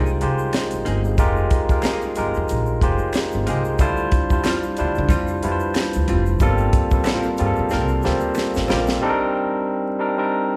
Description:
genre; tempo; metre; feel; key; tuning
R&B, neo-soul; 92 BPM; 4/4; swing 57% on 16ths; C minor; A4 = 441 Hz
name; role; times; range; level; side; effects
archtop guitar, miked and amplified; second line; 0.0-8.8 s; G3 to Bb4; -32 LUFS; equal; none
barky tine electric piano; accompaniment; 0.0-10.6 s; G3 to C5; -24 LUFS; equal; overdrive
upright bass; bass; 0.0-9.0 s; F1 to D3; -26 LUFS; equal; none
egg shaker and finger snaps; percussion; 0.1-9.0 s; none; -42 LUFS; equal; none
tight funk drum kit; drums; 0.2-9.0 s; hi-hat, kick drum, snare drum; -24 LUFS; equal; none
room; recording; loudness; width
moderate scoring stage reverb, RT60 1.6 s; recorded in a church or concert hall, vinyl crackle; -20 LUFS; mono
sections
0.0-9.0 A section; 9.0-10.6 B section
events
drum fill 7.7-9.0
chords
0.0 Fm11; 3.8 Dm11; 6.4 Gm11; 9.0 Cm9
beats
0.53 | 1.18 1.83 2.49 3.14 | 3.79 4.44 5.10 5.75 | 6.40 7.05 7.71 8.36 | 9.01 9.66 10.31

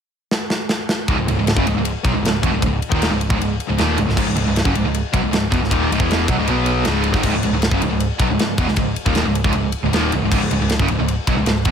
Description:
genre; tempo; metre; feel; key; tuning
hard rock; 156 BPM; 4/4; straight; C# minor; A4 = 440 Hz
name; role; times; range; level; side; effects
tight metal drum kit; drums; 0.3-11.7 s; crash cymbal, kick drum, ride cymbal, snare drum; -21 LUFS; equal; none
biting overdriven guitar; riff; 1.1-11.7 s; C#2 to B3; -22 LUFS; right 10 dB; tremolo
overdriven semi-hollow guitar; riff; 1.1-11.7 s; C#2 to B3; -23 LUFS; left 13 dB; none
scooped high-gain guitar; riff; 1.1-11.7 s; C#2 to B3; -24 LUFS; equal; distortion
hollow-body short-scale picked electric bass; bass; 1.1-11.7 s; C#1 to B1; -22 LUFS; equal; none
room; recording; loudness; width
light reverb; none; -16 LUFS; side -7 dB against mid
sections
0.0-1.1 A section; 1.1-11.7 B section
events
drum fill 0.3-1.1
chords
0.0 N.C.; 1.1 C#m; 6.5 B5; 6.9 C#5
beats
0.31 0.70 | 1.08 1.47 1.85 2.24 | 2.63 3.01 3.40 3.78 | 4.17 4.55 4.94 5.32 | 5.71 6.09 6.48 6.86 | 7.25 7.63 8.02 8.40 | 8.78 9.17 9.55 9.94 | 10.32 10.71 11.09 11.47

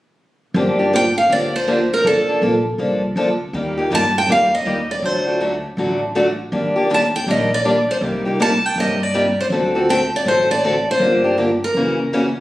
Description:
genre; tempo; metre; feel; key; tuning
acoustic string swing (jazz manouche); 161 BPM; 4/4; swing 62% on 8ths; G minor; A4 = 439 Hz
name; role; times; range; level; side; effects
upright bass; bass; 0.5-12.3 s; F1 to G2; -26 LUFS; equal; none
picked steel-string acoustic guitar; accompaniment; 0.6-12.2 s; C3 to A4; -18 LUFS; left 1 dB; none
picked steel-string acoustic guitar; melody; 1.0-12.1 s; A4 to A5; -18 LUFS; equal; none
room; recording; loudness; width
moderate studio reverb, RT60 0.7 s; recorded on a phone in the room, studio reverb, compression; -15 LUFS; side -16 dB against mid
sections
0.6-12.4 A section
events
none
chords
0.6 Gm7; 2.0 Bbmaj7/F; 3.5 Eb; 5.0 D; 6.5 Ebmaj7; 8.0 Cm7; 9.5 D7; 11.0 Gm7; 11.8 F#7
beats
| 0.56 0.93 1.30 1.67 | 2.05 2.42 2.79 3.17 | 3.54 3.91 4.29 4.66 | 5.03 5.41 5.78 6.15 | 6.53 6.90 7.27 7.65 | 8.02 8.39 8.77 9.14 | 9.51 9.89 10.26 10.63 | 11.01 11.38 11.76 12.13

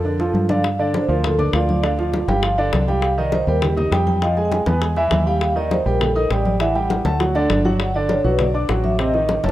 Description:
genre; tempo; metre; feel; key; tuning
Afro-Cuban jazz; 201 BPM; 4/4; straight; unclear; A4 = 442 Hz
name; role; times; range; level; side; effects
vibraphone with soft mallets; melody; 0.0-9.5 s; G4 to Ab5; -23 LUFS; left 1 dB; none
warm concert grand piano; accompaniment; 0.0-9.5 s; C3 to Eb6; -21 LUFS; right 2 dB; none
fingered electric bass; bass; 0.0-9.5 s; F1 to G2; -21 LUFS; equal; none
congas; percussion; 0.0-9.5 s; none; -26 LUFS; left 2 dB; none
bongos; percussion; 0.2-9.5 s; none; -29 LUFS; left 5 dB; none
room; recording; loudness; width
light reverb, small room ambience; rough home demo mix; -16 LUFS; side -14 dB against mid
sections
0.6-9.5 A section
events
drum fill 0.0-0.6, 9.3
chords
0.0 Bbmaj7; 0.6 G5; 1.8 Dm; 2.4 G5; 3.0 Cmadd11; 4.2 Fm; 4.8 E; 5.4 Eb; 6.6 A5; 7.2 D; 7.8 Gmaj7; 9.0 Adim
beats
0.05 0.34 | 0.64 0.94 1.24 1.54 | 1.83 2.13 2.43 2.73 | 3.03 3.33 3.62 3.92 | 4.22 4.52 4.82 5.11 | 5.41 5.71 6.01 6.31 | 6.61 6.90 7.20 7.50 | 7.80 8.10 8.39 8.69 | 8.99 9.29

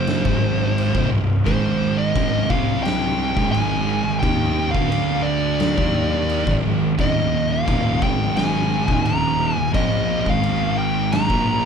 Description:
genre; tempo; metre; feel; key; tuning
stoner and doom metal; 87 BPM; 4/4; straight; unclear; A4 = 440 Hz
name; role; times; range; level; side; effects
fuzz lead guitar; melody; 0.0-11.7 s; C5 to Bb5; -24 LUFS; left 1 dB; distortion
thick fuzz guitar; riff; 0.0-11.7 s; C2 to Eb4; -25 LUFS; left 8 dB; distortion
thick fuzz guitar; riff; 0.0-11.7 s; C2 to Eb4; -23 LUFS; right 9 dB; distortion
fuzz picked electric bass; bass; 0.0-11.7 s; C1 to Eb2; -27 LUFS; equal; overdrive
oversized low-tuned drum kit; drums; 0.1-11.5 s; crash cymbal, kick drum, snare drum; -23 LUFS; equal; none
room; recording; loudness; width
moderate large studio reverb, RT60 0.8 s; band playing live in one room; -17 LUFS; side -6 dB against mid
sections
0.0-11.7 A section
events
none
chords
0.3 Ab5; 0.9 C5; 1.5 Ab5; 2.5 C5; 3.4 Ab5; 4.7 D5; 5.8 Eb5; 6.5 Ab5; 7.0 Eb5; 8.0 Ab5; 8.9 Eb5; 10.3 Ab5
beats
0.08 0.77 | 1.46 2.15 2.84 3.53 | 4.22 4.91 5.60 6.29 | 6.98 7.67 8.36 9.05 | 9.74 10.43 11.12

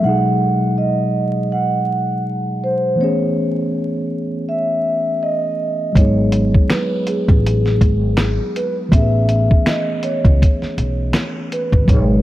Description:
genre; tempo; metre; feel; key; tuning
lo-fi hip hop; 81 BPM; 4/4; swing 60% on 16ths; unclear; A4 = 440 Hz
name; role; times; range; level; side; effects
vibraphone with soft mallets; melody; 0.0-12.2 s; G#4 to F#5; -21 LUFS; right 1 dB; low-pass filter
mellow tine electric piano; accompaniment; 0.0-12.2 s; B2 to G#4; -20 LUFS; left 1 dB; medium stereo tremolo, low-pass filter
upright bass; bass; 6.0-12.2 s; G1 to C#2; -17 LUFS; equal; none
lo-fi sampler-style drum kit; drums; 6.0-12.1 s; finger snaps, hi-hat, kick drum, snare drum; -15 LUFS; equal; vintage 12-bit sampler grit
room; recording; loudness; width
moderate plate reverb, RT60 2.8 s; dreamy mix soaked in reverb, vinyl crackle; -15 LUFS; side -14 dB against mid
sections
0.0-12.2 A section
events
none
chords
0.0 G#m7; 3.0 Amaj7; 6.0 G#m7; 8.9 Amaj7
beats
| 0.03 0.77 1.51 2.25 | 2.99 3.73 4.47 5.21 | 5.95 6.70 7.43 8.18 | 8.92 9.66 10.40 11.14 | 11.88

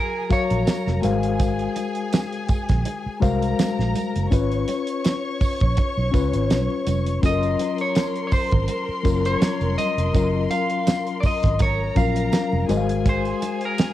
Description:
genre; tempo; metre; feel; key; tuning
lush 1970s-style soul; 82 BPM; 4/4; swing 54% on 16ths; unclear; A4 = 439 Hz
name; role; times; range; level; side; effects
clean electric guitar; melody; 0.0-1.0, 7.3-13.9 s; Bb4 to F5; -26 LUFS; left 1 dB; wide subtle chorus, cassette tape
warm studio string section; second line; 0.0-13.9 s; Ab4 to Db6; -30 LUFS; equal; cassette tape
mellow reed electric piano; accompaniment; 0.0-13.9 s; Gb3 to F5; -25 LUFS; left 6 dB; fast tremolo, cassette tape
vintage muted fingered electric bass; bass; 0.3-13.3 s; F1 to Db2; -24 LUFS; right 1 dB; none
damped 70s drum kit; drums; 0.3-13.9 s; hi-hat, kick drum, snare drum; -22 LUFS; right 1 dB; cassette tape
tambourine; percussion; 0.3-13.9 s; none; -44 LUFS; right 9 dB; none
congas; percussion; 0.7-13.9 s; none; -32 LUFS; right 9 dB; none
room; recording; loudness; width
studio ambience; home recording on cassette; -19 LUFS; side -13 dB against mid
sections
0.0-13.9 A section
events
none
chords
0.0 Gbmaj7; 1.0 Ab13; 4.3 Db7/Ab; 7.2 Gbmaj7; 12.7 Ab13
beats
0.67 | 1.40 2.13 2.86 3.59 | 4.32 5.05 5.78 6.50 | 7.23 7.96 8.69 9.42 | 10.14 10.87 11.60 12.33 | 13.06 13.78

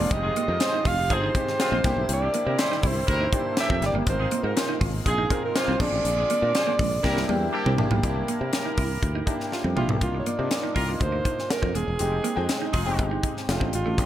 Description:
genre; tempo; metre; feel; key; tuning
polished 1980s jazz-funk pop; 121 BPM; 4/4; straight; unclear; A4 = 444 Hz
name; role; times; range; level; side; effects
breathy alto saxophone; melody; 0.0-14.1 s; F4 to F5; -28 LUFS; right 2 dB; none
clear grand piano; accompaniment; 0.0-14.1 s; G3 to G5; -31 LUFS; left 2 dB; analog chorus
muted studio string section; sustained chords; 0.0-8.0 s; C3 to G4; -37 LUFS; left 2 dB; none
clean electric guitar; riff; 0.0-14.0 s; G3 to F4; -33 LUFS; right 4 dB; wide subtle chorus
sustaining fretless electric bass; bass; 0.0-14.1 s; Eb1 to C3; -28 LUFS; equal; none
crisp fusion drum kit; drums; 0.1-14.1 s; crash cymbal, hi-hat, kick drum, snare drum, toms; -27 LUFS; equal; gated reverb
warm horn section; second line; 0.2-13.1 s; Ab3 to C5; -32 LUFS; equal; digital delay
room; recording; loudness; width
light reverb; none; -22 LUFS; side -12 dB against mid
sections
0.0-8.0 A section; 8.0-10.0 B section; 10.0-14.1 C section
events
drum fill 7.0-8.0, 9.5-10.0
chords
0.1 Fm9; 1.8 C9; 4.1 Ab69; 5.8 Bb7; 7.0 C9; 10.0 Cm11; 12.0 Fm7; 13.5 F13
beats
| 0.11 0.60 1.10 1.59 | 2.09 2.58 3.08 3.57 | 4.07 4.56 5.06 5.55 | 6.05 6.54 7.04 7.53 | 8.03 8.52 9.02 9.52 | 10.01 10.51 11.00 11.50 | 12.00 12.49 12.99 13.48 | 13.98

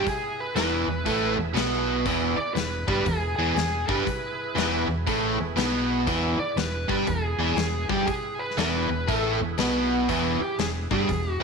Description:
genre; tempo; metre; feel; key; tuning
blues rock power trio and southern rock; 120 BPM; 4/4; swing 64% on 8ths; E major; A4 = 439 Hz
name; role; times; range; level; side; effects
smooth overdriven lead guitar; melody; 0.0-11.4 s; G4 to D5; -30 LUFS; equal; none
overdriven tonewheel organ; sustained chords; 0.0-11.4 s; E4 to E5; -38 LUFS; right 7 dB; slow rotary speaker, chorus vibrato
biting overdriven guitar; riff; 0.0-11.4 s; E2 to B3; -25 LUFS; right 1 dB; none
overdriven fingered electric bass; bass; 0.0-11.4 s; E1 to B1; -31 LUFS; equal; none
big rock drum kit; drums; 0.1-11.2 s; hi-hat, kick drum, snare drum; -32 LUFS; left 5 dB; none
room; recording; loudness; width
moderate echo chamber reverb, RT60 1.3 s, studio ambience; 1960s-style stereo; -23 LUFS; side -5 dB against mid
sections
0.0-11.4 A section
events
none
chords
0.0 E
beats
| 0.05 0.56 1.06 1.56 | 2.06 2.56 3.06 3.56 | 4.06 4.56 5.07 5.57 | 6.07 6.57 7.07 7.58 | 8.08 8.58 9.08 9.58 | 10.09 10.59 11.09

